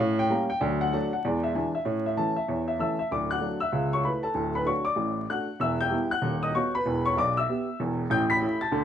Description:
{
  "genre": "jazz, stride piano",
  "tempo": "192 BPM",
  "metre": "4/4",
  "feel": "swing 62% on 8ths",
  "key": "D major",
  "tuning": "A4 = 440 Hz",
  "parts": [
    { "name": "clear upright piano", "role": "solo", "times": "0.0-8.8 s", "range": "D1 to B6", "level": "-24 LUFS", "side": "equal", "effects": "none" }
  ],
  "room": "moderate studio reverb, RT60 0.6 s",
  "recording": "vinyl crackle",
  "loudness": "-24 LUFS",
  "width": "side -9 dB against mid",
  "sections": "0.0-3.1 A section; 3.1-8.8 B section",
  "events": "none",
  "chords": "0.0 A7b9; 0.6 D; 1.2 E7; 1.9 A; 3.1 D; 3.7 A/C#; 4.4 D; 5.6 Em; 6.2 B/D#; 6.9 Em; 8.1 A7"
}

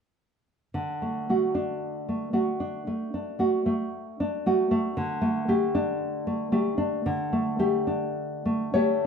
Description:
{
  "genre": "romantic piece for solo classical guitar",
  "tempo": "48-59 BPM",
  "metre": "4/4",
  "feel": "rubato",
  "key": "D major",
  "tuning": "A4 = 445 Hz",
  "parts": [
    { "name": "nylon-string guitar", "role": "solo", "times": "0.7-9.1 s", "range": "D3 to C#5", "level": "-24 LUFS", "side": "equal", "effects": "none" }
  ],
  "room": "moderate large studio reverb, RT60 1.0 s",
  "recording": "band playing live in one room",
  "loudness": "-25 LUFS",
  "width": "side -6 dB against mid",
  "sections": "0.8-9.1 A section",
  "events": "none",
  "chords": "0.8 D; 5.0 Dsus4"
}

